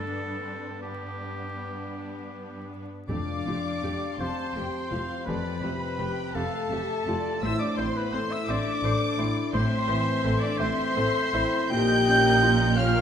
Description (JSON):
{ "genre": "cinematic, emotional film score for orchestra", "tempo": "52-58 BPM (dotted quarters)", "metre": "6/8", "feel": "rubato", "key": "F lydian", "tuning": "A4 = 440 Hz", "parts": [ { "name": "clear oboe", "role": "second line", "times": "0.0-13.0 s", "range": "G4 to G5", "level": "-33 LUFS", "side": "right 2 dB", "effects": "none" }, { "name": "rich symphonic violin section", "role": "second line", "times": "0.0-13.0 s", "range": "B3 to A5", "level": "-38 LUFS", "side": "left 4 dB", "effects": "none" }, { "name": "rich symphonic viola section", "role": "accompaniment", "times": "0.0-13.0 s", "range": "A3 to C5", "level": "-38 LUFS", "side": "right 1 dB", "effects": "none" }, { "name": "warm grand piano", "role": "accompaniment", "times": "0.0-13.0 s", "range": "F2 to F5", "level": "-32 LUFS", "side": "left 1 dB", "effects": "none" }, { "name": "rich symphonic cello section", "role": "bass", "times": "0.0-13.0 s", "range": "F2 to Bb2", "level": "-32 LUFS", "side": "right 2 dB", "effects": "none" }, { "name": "warm symphonic violin section", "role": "melody", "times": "3.1-13.0 s", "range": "A5 to G6", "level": "-34 LUFS", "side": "left 3 dB", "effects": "none" }, { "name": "clear clarinet", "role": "second line", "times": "3.1-13.0 s", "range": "A4 to G5", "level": "-35 LUFS", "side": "left 3 dB", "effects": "none" }, { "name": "mellow concert flute", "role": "second line", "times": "3.1-13.0 s", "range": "A5 to G6", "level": "-33 LUFS", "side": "right 2 dB", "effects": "none" }, { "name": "dark French horn section", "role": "sustained chords", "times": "3.1-13.0 s", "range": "A3 to G4", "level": "-31 LUFS", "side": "left 4 dB", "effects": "none" }, { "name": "rich symphonic double bass section", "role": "bass", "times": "3.1-13.0 s", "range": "F1 to Bb1", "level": "-33 LUFS", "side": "right 1 dB", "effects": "none" }, { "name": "timpani", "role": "percussion", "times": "3.1-4.2 s", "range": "F2", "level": "-40 LUFS", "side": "left 1 dB", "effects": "none" } ], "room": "wet scoring stage reverb, RT60 2.0 s", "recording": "minimal, uncompressed stereo recording, vinyl crackle", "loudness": "-24 LUFS", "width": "side -8 dB against mid", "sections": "0.0-3.1 A section; 3.1-13.0 A section", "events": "none", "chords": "0.0 Gadd9; 3.1 Fadd9; 7.4 Am; 11.7 Bbm", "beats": "| 0.81 1.95 | 3.09 4.20 | 5.27 6.35 | 7.43 8.49 | 9.54 10.61 | 11.72 12.77" }